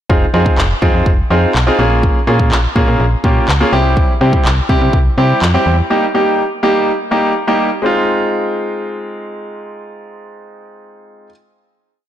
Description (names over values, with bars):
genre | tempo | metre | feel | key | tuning
dance-pop | 124 BPM | 4/4 | straight | F minor | A4 = 441 Hz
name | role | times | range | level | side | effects
clear baby grand piano | accompaniment | 0.1-11.3 s | G3 to Ab4 | -15 LUFS | equal | sidechain pumping
slap-like FM bass | bass | 0.1-5.8 s | F1 to C3 | -14 LUFS | equal | sidechain pumping
pop drum kit | drums | 0.1-5.5 s | handclaps, kick drum | -15 LUFS | equal | none
room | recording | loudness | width
light reverb | blown-out, overdriven recording, overdrive | -11 LUFS | side -11 dB against mid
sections
0.1-7.8 verse; 7.8-11.7 final chord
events
none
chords
0.1 Fm7; 1.8 Bbm7; 3.7 C; 5.9 Eb; 7.8 Fm7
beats
| 0.10 0.58 1.06 1.55 | 2.03 2.52 3.00 3.48 | 3.97 4.45 4.94 5.42 | 5.90 6.39 6.87 7.36 | 7.84 8.32 8.81 9.29 | 9.78 10.26 10.74 11.23